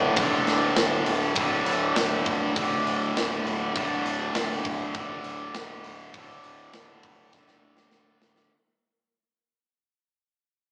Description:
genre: heavy metal.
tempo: 101 BPM.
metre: 4/4.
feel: straight.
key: unclear.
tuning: A4 = 439 Hz.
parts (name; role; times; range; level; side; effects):
heavy high-gain guitar; riff; 0.0-8.5 s; D2 to D3; -33 LUFS; equal; distortion.
sludgy distorted guitar; riff; 0.0-8.5 s; D2 to D3; -30 LUFS; equal; overdrive.
growling picked electric bass; bass; 0.0-8.5 s; D1 to F1; -37 LUFS; equal; overdrive.
tight metal drum kit; drums; 0.2-8.5 s; hi-hat, kick drum, snare drum; -32 LUFS; equal; none.
room: moderate small room reverb, RT60 0.5 s.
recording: rough rehearsal-room recording, small speaker sound.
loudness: -26 LUFS.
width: mono.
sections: 0.0-8.5 A section.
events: fade-out 0.0-8.5; drum fill 7.3-8.5.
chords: 0.0 D5.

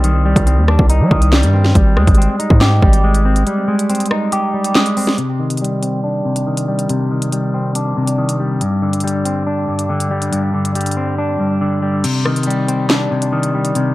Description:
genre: hip hop, drill.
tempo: 140 BPM.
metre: 4/4.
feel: half-time.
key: C minor.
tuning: A4 = 439 Hz.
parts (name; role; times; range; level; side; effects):
electric guitar with an envelope filter; accompaniment; 0.0-13.9 s; G2 to G4; -16 LUFS; left 1 dB; low-pass filter, tape echo.
hard-hitting 808-style bass; bass; 0.0-3.4 s; Ab1 to G3; -12 LUFS; equal; none.
drill drum kit; drums; 0.0-13.9 s; crash cymbal, handclaps, hi-hat, kick drum, rim click, snare drum; -16 LUFS; equal; overdrive.
room: light reverb.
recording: echo-heavy mix.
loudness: -13 LUFS.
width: side -18 dB against mid.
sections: 0.0-5.2 A section; 5.2-12.0 B section; 12.0-13.9 C section.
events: break 3.5-5.2; filter sweep on clean electric guitar 5.2-12.0; kick muted 12.0-13.9.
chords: 0.0 Cmadd9; 1.8 Abmaj7; 5.2 Cmadd9; 8.6 Gsus4; 12.0 Cmadd9.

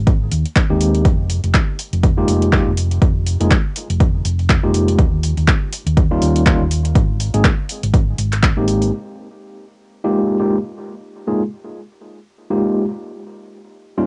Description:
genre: deep house.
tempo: 122 BPM.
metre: 4/4.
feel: swing 57% on 16ths.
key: F minor.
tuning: A4 = 440 Hz.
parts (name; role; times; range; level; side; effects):
hollow-body short-scale fingered electric bass; bass; 0.0-8.9 s; F1 to Eb2; -21 LUFS; equal; sidechain pumping.
deep house drum kit; drums; 0.1-8.9 s; handclaps, hi-hat; -25 LUFS; equal; cassette tape.
electronic kick drum; drums; 0.1-8.5 s; none; -17 LUFS; equal; overdrive, cassette tape.
tine electric piano; stabs; 0.7-14.1 s; G3 to Ab4; -22 LUFS; equal; vintage 12-bit sampler grit, sidechain pumping, cassette tape, tape echo.
room: light reverb.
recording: home recording on cassette, nothing above 11.0 kHz.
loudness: -17 LUFS.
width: mono.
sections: 0.0-8.9 A section; 8.9-14.1 B section.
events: none.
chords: 0.0 Abmaj9; 1.1 Fm11; 5.0 Eb9; 7.0 Abmaj9; 8.9 Fm11; 12.9 Eb9.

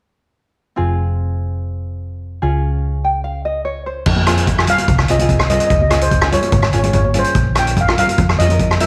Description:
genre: calypso.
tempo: 146 BPM.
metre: 4/4.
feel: straight.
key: F minor.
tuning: A4 = 440 Hz.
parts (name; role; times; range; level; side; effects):
tenor ukulele; accompaniment; 0.8-8.9 s; C4 to G5; -25 LUFS; equal; none.
hollow-body short-scale fingered electric bass; bass; 0.8-8.9 s; F1 to F2; -20 LUFS; equal; none.
street-band drum kit; drums; 4.1-8.9 s; crash cymbal, hi-hat, kick drum, rim click; -18 LUFS; equal; none.
congas; percussion; 4.2-8.9 s; none; -28 LUFS; equal; none.
steel pan; melody; 4.7-8.9 s; C5 to G5; -20 LUFS; equal; none.
room: light reverb.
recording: none.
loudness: -16 LUFS.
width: mono.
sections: 0.8-4.1 A section; 4.1-8.9 B section.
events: ukulele fill 2.8-4.1.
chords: 0.8 Fm; 2.4 Db; 4.1 Fm; 5.7 Db; 7.4 Bbm.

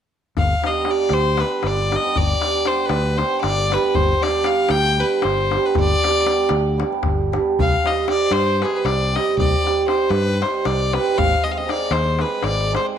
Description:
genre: balkan folk, Balkan wedding band.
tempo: 233 BPM (eighths).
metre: 7/8.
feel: straight.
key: G phrygian dominant.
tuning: A4 = 441 Hz.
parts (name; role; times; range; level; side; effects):
bright fiddle; melody; 0.4-12.9 s; Ab4 to G5; -21 LUFS; left 3 dB; none.
fingered electric bass; bass; 0.4-12.8 s; G1 to G2; -22 LUFS; left 1 dB; none.
darbuka; percussion; 0.4-12.9 s; none; -25 LUFS; left 4 dB; none.
cimbalom; accompaniment; 0.6-13.0 s; G3 to Ab4; -21 LUFS; right 6 dB; none.
room: moderate echo chamber reverb, RT60 1.9 s.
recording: 1960s-style stereo.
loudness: -17 LUFS.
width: side -8 dB against mid.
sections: 0.4-13.0 A section.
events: none.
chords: 0.4 G; 7.6 Cm; 11.2 Ab.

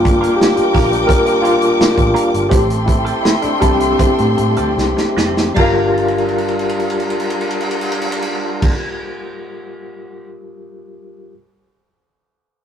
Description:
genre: lush 1970s-style soul.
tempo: 74-87 BPM.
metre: 4/4.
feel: straight.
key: G dorian.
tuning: A4 = 440 Hz.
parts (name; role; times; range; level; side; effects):
warm studio string section; second line; 0.0-8.7 s; G4 to D6; -22 LUFS; left 1 dB; none.
overdriven tine electric piano; accompaniment; 0.0-11.3 s; G3 to F5; -17 LUFS; left 1 dB; fast tremolo.
tonewheel organ; sustained chords; 0.0-8.7 s; G3 to Bb4; -24 LUFS; right 2 dB; overdrive, fast rotary speaker.
semi-hollow electric guitar; riff; 0.0-9.1 s; G3 to C5; -27 LUFS; right 5 dB; wah.
vintage muted fingered electric bass; bass; 0.0-8.7 s; F1 to A2; -22 LUFS; equal; none.
warm soul drum kit; drums; 0.1-10.3 s; crash cymbal, hi-hat, kick drum, ride cymbal, snare drum; -18 LUFS; right 1 dB; none.
room: moderate stone room reverb, RT60 1.3 s.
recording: rough rehearsal-room recording, tube saturation.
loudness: -13 LUFS.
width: side -8 dB against mid.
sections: 0.0-5.6 A section; 5.6-8.8 B section.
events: slowing down 0.0-5.6; tine electric piano solo 0.0-5.6; drum fill 4.8-5.6, 6.0-8.6.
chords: 0.0 Gm7; 2.5 Am7; 5.6 Gm7.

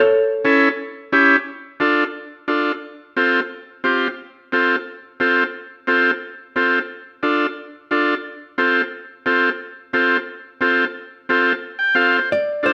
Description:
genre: latin.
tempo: 177 BPM.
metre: 4/4.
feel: straight.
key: unclear.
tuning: A4 = 443 Hz.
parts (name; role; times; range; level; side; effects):
hollow-body jazz guitar; melody; 0.0-1.1, 12.3-12.7 s; A4 to D5; -19 LUFS; equal; none.
combo organ; accompaniment; 0.4-12.7 s; C4 to G5; -18 LUFS; equal; none.
room: moderate stone room reverb, RT60 1.1 s.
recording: band playing live in one room.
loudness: -19 LUFS.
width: mono.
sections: 0.0-1.5 A section; 1.5-12.3 B section.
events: transistor combo organ fill 11.6-12.3.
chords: 0.1 A7; 1.5 Dm; 2.8 F; 6.9 Dm; 8.2 F.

